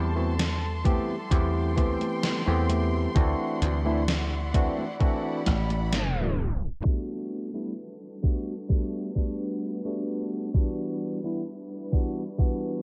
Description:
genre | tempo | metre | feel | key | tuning
vaporwave | 65 BPM | 4/4 | straight | unclear | A4 = 440 Hz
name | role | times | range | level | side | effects
barky tine electric piano | accompaniment | 0.0-12.8 s | E3 to G4 | -33 LUFS | equal | lush chorus, analog delay
warm studio string section | sustained chords | 0.0-12.8 s | G3 to C6 | -39 LUFS | equal | low-pass filter
dry thumbed slap bass | bass | 0.0-6.5 s | A1 to E2 | -30 LUFS | equal | none
gated 80s digital drum machine | drums | 0.2-6.8 s | congas, hi-hat, snare drum | -35 LUFS | equal | gated reverb, gated reverb snare, overdrive, vintage 12-bit sampler grit
electronic kick drum | drums | 0.9-12.6 s | none | -27 LUFS | equal | overdrive, vintage 12-bit sampler grit
room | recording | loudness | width
light reverb | cassette tape, low-pass filter, tape stop | -27 LUFS | mono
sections
0.0-6.9 A section; 6.9-12.8 B section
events
band accent 5.9-6.4; tape stop 5.9-6.9; filter sweep on string section 6.9-12.8; filter sweep 6.9-12.8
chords
0.0 Am9/E; 3.2 D9; 6.9 Gmaj9; 10.5 Em9

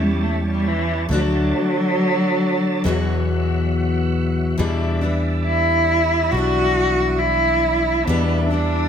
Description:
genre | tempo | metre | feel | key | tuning
acoustic folk duo or small band | 69 BPM | 4/4 | straight | E dorian | A4 = 442 Hz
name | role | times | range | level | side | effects
warm cello | melody | 0.0-8.9 s | E3 to F#4 | -19 LUFS | equal | none
picked steel-string acoustic guitar | accompaniment | 0.0-8.9 s | E2 to F#4 | -23 LUFS | left 4 dB | none
tonewheel organ | sustained chords | 0.0-8.9 s | F#3 to A5 | -31 LUFS | right 1 dB | slow rotary speaker, overdrive, chorus vibrato
fingered electric bass | bass | 0.0-8.9 s | B1 to E2 | -22 LUFS | equal | none
room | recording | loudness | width
light reverb | none | -17 LUFS | side -8 dB against mid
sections
0.0-4.6 A section; 4.6-8.9 B section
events
cello solo 0.0-4.6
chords
0.0 A7; 1.1 D; 2.8 Esus2; 4.6 Em7

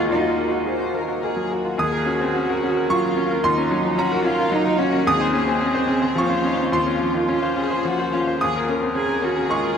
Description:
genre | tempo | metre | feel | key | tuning
neoclassical piano and strings | 108 BPM | 3/4 | rubato | Eb dorian | A4 = 438 Hz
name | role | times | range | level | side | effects
warm chamber violin section | melody | 0.0-9.8 s | Eb4 to C5 | -25 LUFS | left 3 dB | none
dark cello | second line | 0.0-9.8 s | Bb3 to Ab4 | -24 LUFS | right 2 dB | none
bright grand piano | accompaniment | 0.0-9.8 s | Eb2 to Eb6 | -21 LUFS | equal | none
room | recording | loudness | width
wet cathedral reverb, RT60 5.1 s | in a vast, echoing space | -18 LUFS | side -7 dB against mid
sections
0.0-1.8 A section; 1.8-9.8 B section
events
none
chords
0.1 Ebmadd9; 1.8 Ebm7; 5.1 Dbmaj7/Eb; 8.4 Ab7sus4/Eb

